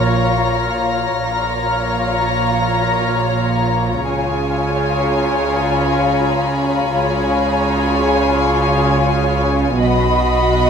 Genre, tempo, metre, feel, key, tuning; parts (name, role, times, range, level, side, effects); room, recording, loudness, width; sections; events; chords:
cinematic, suspense film score; 84 BPM; 4/4; straight; A4 = 441 Hz
warm symphonic violin section; melody; 0.0-10.7 s; Ab5 to B5; -22 LUFS; left 4 dB
dark studio violin section; second line; 0.0-10.7 s; F4 to D#5; -19 LUFS; left 2 dB
rich symphonic cello section; bass; 0.0-10.7 s; Bb2 to Db3; -21 LUFS; right 3 dB
warm symphonic double bass section; bass; 0.0-10.7 s; Bb1 to Db2; -22 LUFS; right 3 dB
vibraphone with medium hard mallets; texture; 0.0-10.7 s; F4 to Eb6; -27 LUFS; left 6 dB
warm symphonic violin section; texture; 0.0-10.7 s; Ab5 to Bb6; -27 LUFS; left 2 dB
moderate scoring stage reverb, RT60 1.6 s; -14 LUFS; side -7 dB against mid
0.0-10.7 A section
0.0 Bbm; 4.1 Db; 9.8 B